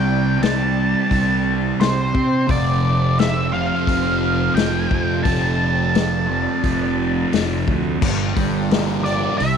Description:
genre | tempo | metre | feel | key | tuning
psychedelic rock | 87 BPM | 4/4 | straight | unclear | A4 = 440 Hz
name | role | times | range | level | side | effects
octave-fuzz lead guitar | melody | 0.0-9.6 s | C5 to A5 | -23 LUFS | equal | wah, distortion, tape echo
clear symphonic string section | sustained chords | 0.0-9.6 s | E3 to D5 | -31 LUFS | right 12 dB | none
fuzz guitar | riff | 0.0-9.6 s | F2 to D4 | -20 LUFS | right 1 dB | distortion, phaser
fuzz fingered electric bass | bass | 0.0-9.6 s | F1 to C3 | -24 LUFS | right 1 dB | overdrive
vintage drum kit | drums | 0.4-9.6 s | crash cymbal, hi-hat, kick drum, snare drum | -22 LUFS | left 4 dB | none
room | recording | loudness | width
light reverb, studio reverb | 1960s-style stereo | -16 LUFS | side -7 dB against mid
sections
0.0-8.0 A section; 8.0-9.6 B section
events
none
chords
0.0 Cadd9; 2.5 F; 8.0 Gm7

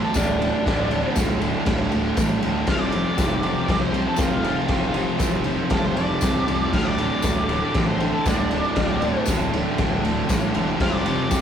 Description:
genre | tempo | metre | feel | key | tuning
garage rock duo or trio | 118 BPM | 4/4 | straight | unclear | A4 = 440 Hz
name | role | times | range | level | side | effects
octave-fuzz lead guitar | melody | 0.0-11.4 s | D4 to F5 | -27 LUFS | equal | distortion
thick fuzz guitar | riff | 0.0-11.4 s | D2 to F3 | -23 LUFS | equal | distortion
tambourine | percussion | 0.1-11.4 s | none | -35 LUFS | left 5 dB | none
fuzz picked electric bass | bass | 0.2-11.4 s | D1 to D2 | -30 LUFS | equal | overdrive
raw garage drum kit | drums | 0.2-11.4 s | crash cymbal, kick drum, ride cymbal, snare drum | -24 LUFS | equal | none
room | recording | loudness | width
moderate small room reverb, RT60 0.5 s | rough rehearsal-room recording, warm saturation | -19 LUFS | side -8 dB against mid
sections
0.0-11.4 A section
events
none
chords
0.0 D5; 2.7 F5; 6.7 D5; 10.8 F5

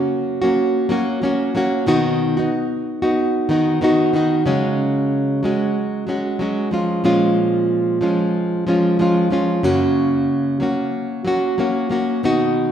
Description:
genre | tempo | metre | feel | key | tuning
pop | 93 BPM | 4/4 | swing 55% on 16ths | unclear | A4 = 440 Hz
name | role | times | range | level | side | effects
nylon-string guitar | solo | 0.0-12.7 s | Gb2 to Gb4 | -16 LUFS | equal | none
room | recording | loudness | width
wet recital hall reverb, RT60 1.5 s | recorded in a church or concert hall | -16 LUFS | side -9 dB against mid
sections
0.0-4.5 A section; 4.5-12.7 B section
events
none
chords
0.0 Gb; 1.9 Cb; 4.5 Dbsus4; 6.7 Bbm7; 9.6 Gb

